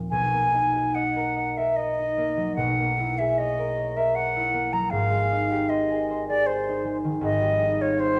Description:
classical, impressionist duo for flute and harp; 76 BPM; 3/4; uneven beats, rubato; B major; A4 = 439 Hz
concert harp; accompaniment; 0.0-8.2 s; G#1 to D#5; -29 LUFS; equal
silver concert flute; melody; 0.1-8.2 s; B#4 to A#5; -26 LUFS; equal
wet recital hall reverb, RT60 1.3 s; dark, warm production; -24 LUFS; mono
0.1-8.2 A section
0.1 Bmaj7; 2.6 F#9/B; 4.9 G#maj7; 7.2 D#9/G#

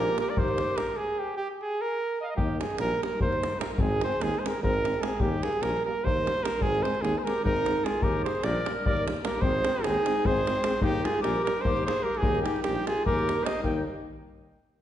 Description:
balkan folk, Balkan brass band; 299 BPM (eighths); 7/8; straight; Eb major; A4 = 440 Hz
warm flugelhorn; melody; 0.0-13.8 s; G4 to G5; -28 LUFS; right 2 dB
clear clarinet; second line; 0.0-1.0, 7.3-13.8 s; Eb4 to C5; -33 LUFS; left 4 dB
dark euphonium; accompaniment; 0.0-13.8 s; G3 to Ab3; -37 LUFS; right 3 dB
mellow French horn; accompaniment; 0.0-13.8 s; Bb3 to C4; -38 LUFS; left 4 dB
warm tuba; bass; 0.0-13.8 s; Ab1 to Eb2; -33 LUFS; equal
davul; percussion; 0.1-13.8 s; -31 LUFS; left 1 dB
wet recital hall reverb, RT60 1.4 s; recorded in a church or concert hall, nothing above 10.7 kHz; -25 LUFS; side -11 dB against mid
0.0-2.4 A section; 2.4-13.6 A section; 13.6-14.8 B section
stop 1.0-2.4
0.0 Eb; 1.0 N.C.; 2.4 Eb; 3.8 Ab; 5.2 Eb; 6.6 Ab; 8.0 Eb; 9.4 Ab; 10.8 Eb

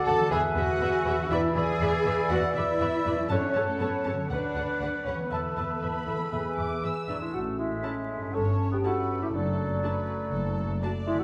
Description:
cinematic; 120 BPM; 4/4; straight; A4 = 440 Hz
clear clarinet; second line; 0.0-7.1 s; A4 to D5; -38 LUFS; equal
hollow flute section; second line; 0.0-11.2 s; D5 to B5; -39 LUFS; equal
mellow cor anglais; second line; 0.0-11.2 s; F#3 to F#5; -38 LUFS; equal
rich chamber violin section; second line; 0.0-11.2 s; A4 to A5; -40 LUFS; equal
mellow French horn section; sustained chords; 0.0-11.2 s; A3 to E5; -37 LUFS; equal
concert harp; arpeggios; 0.0-11.2 s; F#2 to D5; -39 LUFS; equal
dark chamber cello section; bass; 0.0-10.7 s; F#2 to A4; -34 LUFS; equal
rich chamber violin section; melody; 0.1-10.9 s; E5 to E6; -43 LUFS; equal
warm studio viola section; accompaniment; 0.1-10.9 s; C#4 to E5; -40 LUFS; equal
warm chamber double bass section; bass; 0.1-10.7 s; F#1 to F#2; -36 LUFS; equal
folk marimba with medium mallets; melody; 7.1-11.2 s; D4 to A4; -35 LUFS; equal
wet scoring stage reverb, RT60 2.0 s; vinyl crackle; -28 LUFS; mono
0.0-7.3 A section; 7.3-11.2 B section
0.3 E; 1.3 E7; 3.3 F#m; 4.3 Bm/D; 5.3 Esus4; 6.3 E; 7.3 A; 8.3 A7/G; 9.3 D/F#

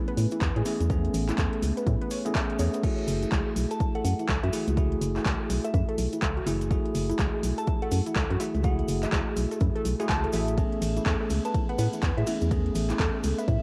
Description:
deep house; 124 BPM; 4/4; swing 61% on 16ths; F# minor; A4 = 440 Hz
warbly dusty pluck; arpeggios; 0.0-13.6 s; E4 to E5; -37 LUFS; equal; chorus, sidechain pumping, analog delay
bell-like tine electric piano; stabs; 0.0-13.6 s; A3 to G#4; -34 LUFS; equal; sidechain pumping, tape echo
deep house drum kit; drums; 0.1-13.6 s; crash cymbal, handclaps, hi-hat, ride cymbal; -37 LUFS; equal; overdrive, small room ambience, cassette tape
organ-like FM bass; bass; 0.2-13.6 s; F#1 to A2; -30 LUFS; equal; tube saturation, sidechain pumping
cabasa; percussion; 0.2-13.6 s; -48 LUFS; equal
electronic kick drum; drums; 0.4-13.6 s; -31 LUFS; equal; overdrive, small room ambience, cassette tape
soft synth bell; melody; 3.7-13.6 s; E5 to A5; -40 LUFS; equal; chorus, phaser, cassette tape, tape echo
light reverb, digital ambience; home recording on cassette; -27 LUFS; mono
0.0-13.6 A section
0.0 Amaj9; 2.8 F#m9; 10.6 Amaj9

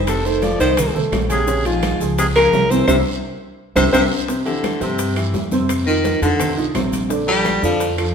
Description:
Afro-Cuban jazz; 171 BPM; 4/4; straight; A4 = 440 Hz
dark baby grand piano; accompaniment; 0.0-8.1 s; C3 to Eb5; -22 LUFS; right 2 dB
upright bass; bass; 0.0-8.1 s; F1 to G2; -23 LUFS; equal
breathy alto saxophone; melody; 0.1-4.0 s; F4 to D5; -18 LUFS; left 1 dB
bright baritone saxophone; second line; 0.1-8.0 s; Ab2 to G3; -22 LUFS; left 1 dB
bongos; percussion; 0.1-8.1 s; -32 LUFS; left 4 dB
claves; percussion; 0.1-8.1 s; -33 LUFS; left 3 dB
congas; percussion; 0.1-8.1 s; -27 LUFS; right 2 dB
guiro; percussion; 0.1-8.1 s; -35 LUFS; right 3 dB
maracas; percussion; 0.1-8.1 s; -35 LUFS; left 4 dB
timbales; percussion; 0.1-8.1 s; -29 LUFS; right 3 dB
wet stone room reverb, RT60 1.5 s; band playing live in one room; -15 LUFS; side -6 dB against mid
0.0-4.3 A section; 4.3-8.1 B section
band accent 2.9-4.3; drum fill 3.4-4.3; baritone saxophone solo 4.3-8.1
0.1 F7; 1.5 Bbm9; 2.9 C; 4.3 Cadd9; 5.7 F5; 7.1 Bbmaj7

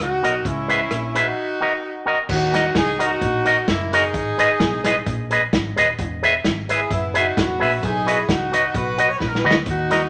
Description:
ska; 130 BPM; 4/4; swing 54% on 8ths; A4 = 440 Hz
warm horn section; melody; 0.0-10.1 s; A#3 to C#5; -26 LUFS; equal
fingered electric bass; bass; 0.0-10.1 s; D#1 to D#2; -31 LUFS; equal
vintage drum kit; drums; 0.0-10.0 s; crash cymbal, hi-hat, kick drum, rim click, snare drum; -26 LUFS; equal
electric guitar with an envelope filter; accompaniment; 0.2-10.0 s; F#4 to E5; -22 LUFS; equal; spring reverb, tape echo
moderate studio reverb, RT60 0.8 s; -20 LUFS; mono
0.0-2.3 A section; 2.3-10.1 B section
drum fill 9.2-9.7
0.5 C#m7; 1.4 D#m; 4.1 G#m; 6.0 E; 7.8 B

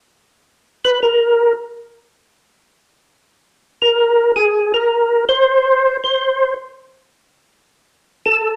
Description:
jazz; 108 BPM; 4/4; swing 69% on 8ths; A4 = 443 Hz
percussive tonewheel organ; solo; 0.8-8.6 s; Ab4 to C5; -15 LUFS; equal; slow rotary speaker, chorus vibrato
wet large studio reverb, RT60 0.8 s; -16 LUFS; mono
0.0-8.6 A section
tonewheel organ solo 0.0-8.6

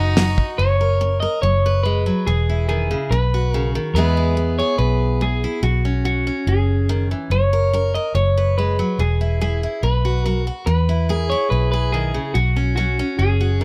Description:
honky-tonk and classic country; 143 BPM; 4/4; straight; B major; A4 = 440 Hz
electric guitar through a small old amp; melody; 0.0-13.6 s; F#4 to D#5; -25 LUFS; equal
rich fiddle; second line; 0.0-0.5 s; D#4; -28 LUFS; equal
picked steel-string acoustic guitar; accompaniment; 0.0-13.6 s; B2 to B4; -27 LUFS; equal
vintage muted fingered electric bass; bass; 0.0-13.6 s; E1 to E2; -21 LUFS; equal
damped 70s drum kit; drums; 0.2-0.5 s; hi-hat, kick drum, snare drum; -20 LUFS; equal
little or no reverb; -19 LUFS; mono
0.6-7.3 A section; 7.3-13.6 B section
0.0 B; 0.6 F#; 1.4 Bsus2/F#; 2.3 E; 3.1 Bsus2; 3.9 E; 5.6 Bsus2; 7.3 F#; 8.2 Bsus2/F#; 9.0 E; 9.8 B5; 10.7 E; 12.4 Bsus2

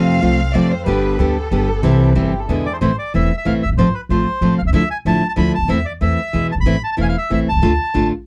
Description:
tango; 187 BPM; 3/4; rubato; A harmonic minor; A4 = 440 Hz
warm studio violin section; second line; 0.0-2.5 s; G4 to F5; -26 LUFS; equal; tape echo
nylon-string guitar; accompaniment; 0.0-8.1 s; B2 to G4; -19 LUFS; equal
bandoneon; stabs; 0.0-2.8 s; B3 to A4; -32 LUFS; equal
upright bass; bass; 0.0-8.1 s; E1 to F2; -21 LUFS; equal
bandoneon; melody; 2.7-8.1 s; B4 to B5; -24 LUFS; equal
light reverb; dry, close 1970s-style studio recording; -17 LUFS; mono
0.0-2.8 A section; 2.8-8.3 B section
violin section solo 0.0-2.8
0.0 F; 0.9 Gadd9; 1.8 C; 2.5 E7; 2.8 Am; 3.8 F/A; 4.7 Dmadd9; 5.7 Am/E; 6.3 E; 6.7 Am; 7.6 Dm

